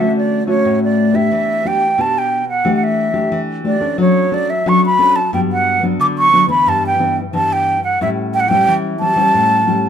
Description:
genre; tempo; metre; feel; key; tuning
samba; 90 BPM; 4/4; straight; D major; A4 = 436 Hz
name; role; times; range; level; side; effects
breathy concert flute; melody; 0.0-9.9 s; C#5 to D6; -14 LUFS; right 2 dB; none
nylon-string guitar; accompaniment; 0.0-9.9 s; G2 to A4; -17 LUFS; left 2 dB; none
room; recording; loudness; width
light reverb; minimal, uncompressed stereo recording; -12 LUFS; side -8 dB against mid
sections
0.0-9.9 A section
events
none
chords
0.0 Dmaj7; 1.3 Em7; 2.7 A7sus4/E; 4.0 Dmaj7/F#; 5.3 Gmaj7; 6.7 Em7/G; 8.0 A7

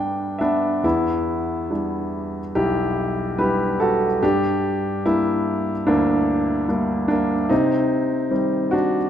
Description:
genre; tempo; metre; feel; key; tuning
classical, lyrical solo piano; 72 BPM; 4/4; rubato; E minor; A4 = 441 Hz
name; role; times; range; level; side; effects
warm grand piano; solo; 0.0-9.1 s; B1 to G5; -19 LUFS; equal; none
room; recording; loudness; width
moderate concert hall reverb, RT60 2.0 s; minimal, uncompressed stereo recording; -19 LUFS; side -9 dB against mid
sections
0.8-9.1 A section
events
grand piano fill 0.0-0.8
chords
0.0 G; 0.8 Em7; 4.2 Gm; 7.5 Cm

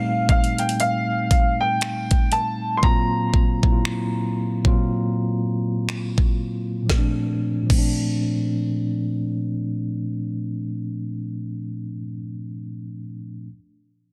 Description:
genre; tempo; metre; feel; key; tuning
contemporary R&B; 59 BPM; 4/4; swing 58% on 16ths; Bb major; A4 = 439 Hz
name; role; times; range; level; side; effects
clear grand piano; melody; 0.0-5.8 s; F5 to C6; -27 LUFS; equal; low-pass filter, digital delay
mellow tine electric piano; accompaniment; 0.0-13.5 s; Bb2 to F4; -26 LUFS; equal; low-pass filter
trap drum kit; drums; 0.3-8.0 s; crash cymbal, finger snaps, hi-hat, kick drum, snare drum; -22 LUFS; equal; vintage 12-bit sampler grit, soft clipping on snare
room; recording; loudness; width
light reverb; dense, heavily limited modern master; -23 LUFS; mono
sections
0.0-6.9 A section; 6.9-11.0 B section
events
filter sweep 0.0-6.9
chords
0.0 F9; 2.8 Gbmaj7#11/Bb; 6.9 Bbmaj7

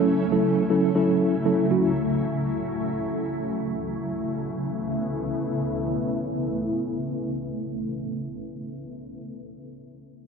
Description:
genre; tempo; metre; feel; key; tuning
pop; free time; none; none; A major; A4 = 440 Hz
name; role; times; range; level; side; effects
mellow tine electric piano; accompaniment; 0.0-1.9 s; F#3 to A4; -20 LUFS; right 1 dB; medium stereo tremolo, low-pass filter
granular cloud pad; sustained chords; 0.0-8.4 s; C#3 to E4; -26 LUFS; equal; built-in reverb, low-pass filter
room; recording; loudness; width
light reverb; dry, close 1970s-style studio recording; -23 LUFS; side -5 dB against mid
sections
0.0-4.0 A section; 4.0-8.0 B section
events
none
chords
0.0 F#m7; 4.0 Aadd9

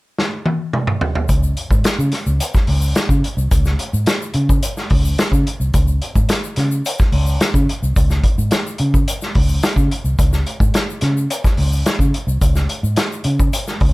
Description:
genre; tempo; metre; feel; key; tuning
funk; 108 BPM; 4/4; straight; unclear; A4 = 444 Hz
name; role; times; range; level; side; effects
vintage drum kit; drums; 0.2-13.9 s; hi-hat, kick drum, snare drum, toms; -17 LUFS; equal; none
vintage muted fingered electric bass; bass; 1.3-13.9 s; C2 to Db3; -17 LUFS; equal; none
tube shaker; percussion; 1.3-13.8 s; none; -33 LUFS; left 6 dB; none
room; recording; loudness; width
little or no reverb; none; -15 LUFS; side -21 dB against mid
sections
0.0-1.3 A section; 1.3-13.9 B section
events
drum fill 0.2-1.3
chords
none

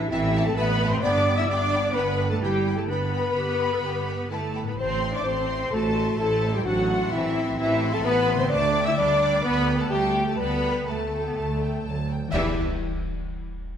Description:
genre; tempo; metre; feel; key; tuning
cinematic, heroic adventure film score; 128 BPM; 4/4; straight; unclear; A4 = 438 Hz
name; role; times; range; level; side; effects
rich symphonic violin section; melody; 0.0-12.6 s; E5 to E6; -35 LUFS; left 2 dB; none
large flute ensemble; second line; 0.0-12.6 s; E5 to E6; -33 LUFS; equal; none
warm clarinet; second line; 0.0-12.5 s; F#3 to D5; -32 LUFS; equal; none
warm symphonic viola section; accompaniment; 0.0-12.6 s; E4 to E5; -33 LUFS; right 1 dB; none
warm French horn section; sustained chords; 0.0-12.5 s; E4 to E5; -26 LUFS; left 2 dB; none
concert harp; arpeggios; 0.0-12.6 s; G2 to G5; -36 LUFS; left 6 dB; none
bright symphonic cello section; bass; 0.0-12.6 s; E3 to E4; -30 LUFS; right 2 dB; none
rich chamber double bass section; bass; 0.0-12.6 s; G1 to E2; -28 LUFS; right 3 dB; none
warm symphonic violin section; second line; 0.1-12.6 s; G4 to C6; -37 LUFS; left 2 dB; none
clash cymbals and concert bass drum; percussion; 12.3-13.2 s; none; -36 LUFS; equal; none
room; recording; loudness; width
wet scoring stage reverb, RT60 1.7 s; none; -22 LUFS; side -8 dB against mid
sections
0.0-12.3 A section; 12.3-13.8 B section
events
band accent 12.3-12.8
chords
0.0 Am; 1.0 G; 4.8 Am; 8.5 Dsus4; 12.3 Em7

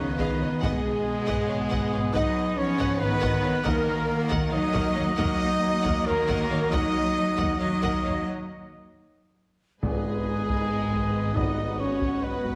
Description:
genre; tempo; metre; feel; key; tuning
cinematic, epic orchestral film score; 275 BPM (eighths); 7/8; straight; unclear; A4 = 440 Hz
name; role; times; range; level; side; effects
warm studio violin section; melody; 0.0-12.6 s; G#4 to F#5; -42 LUFS; equal; none
large flute ensemble; second line; 0.0-12.6 s; G#4 to D#5; -39 LUFS; equal; none
warm symphonic violin section; second line; 0.0-12.6 s; G#4 to F#5; -40 LUFS; equal; none
warm symphonic viola section; accompaniment; 0.0-12.6 s; F#4 to D#5; -39 LUFS; equal; none
mellow French horn section; sustained chords; 0.0-12.6 s; G#3 to D#4; -32 LUFS; equal; none
warm studio string section; sustained chords; 0.0-12.6 s; A#3 to G#5; -40 LUFS; equal; none
warm trombone section; sustained chords; 0.0-12.6 s; D#3 to D#4; -42 LUFS; equal; none
mellow trumpet; stabs; 0.0-12.6 s; G#4 to D#5; -34 LUFS; equal; none
dark symphonic double bass section; bass; 0.0-12.6 s; G#1 to D#2; -35 LUFS; equal; none
warm symphonic cello section; bass; 0.0-12.6 s; G#2 to F#3; -33 LUFS; equal; none
taiko ensemble; drums; 0.2-12.6 s; none; -35 LUFS; equal; none
timpani; percussion; 3.7-4.3, 9.8-12.0 s; G#2 to D#3; -37 LUFS; equal; none
room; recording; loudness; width
wet scoring stage reverb, RT60 1.5 s; heavily compressed radio sound; -26 LUFS; mono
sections
0.0-9.8 A section; 9.8-12.6 B section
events
break 8.3-9.8; drum fill 9.2-9.8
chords
0.0 C#add9; 0.6 G#m7; 3.7 D#m; 9.8 G#m; 11.4 B/G#

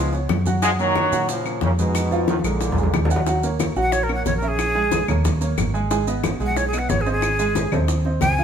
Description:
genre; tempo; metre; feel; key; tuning
latin, salsa; 182 BPM; 4/4; straight; Eb minor; A4 = 440 Hz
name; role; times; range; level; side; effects
brilliant trombone section; melody; 0.0-3.1 s; Ab2 to Ab3; -23 LUFS; equal; none
warm baby grand piano; accompaniment; 0.0-8.4 s; F3 to Ab5; -25 LUFS; right 3 dB; none
vintage muted fingered electric bass; bass; 0.0-8.4 s; Ab1 to Bb2; -23 LUFS; equal; none
bongos; percussion; 0.1-8.4 s; none; -29 LUFS; left 6 dB; none
congas; percussion; 0.1-8.4 s; none; -27 LUFS; left 1 dB; none
maracas; percussion; 0.1-8.4 s; none; -36 LUFS; right 5 dB; none
claves; percussion; 0.3-8.4 s; none; -36 LUFS; left 9 dB; none
breathy bright jazz flute; melody; 3.8-8.4 s; Ab4 to Ab5; -22 LUFS; equal; none
room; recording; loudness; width
wet stone room reverb, RT60 1.4 s; band playing live in one room; -18 LUFS; side -8 dB against mid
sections
0.0-3.3 A section; 3.3-8.4 B section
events
drum fill 2.3-3.3; flute solo 3.3-8.4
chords
0.0 Db7; 0.6 Gbmaj7; 1.9 Fdim; 2.6 Bb7; 3.3 Ebm7; 4.6 Bbm7b5; 5.2 Eb5; 5.9 Abm; 7.2 Ab

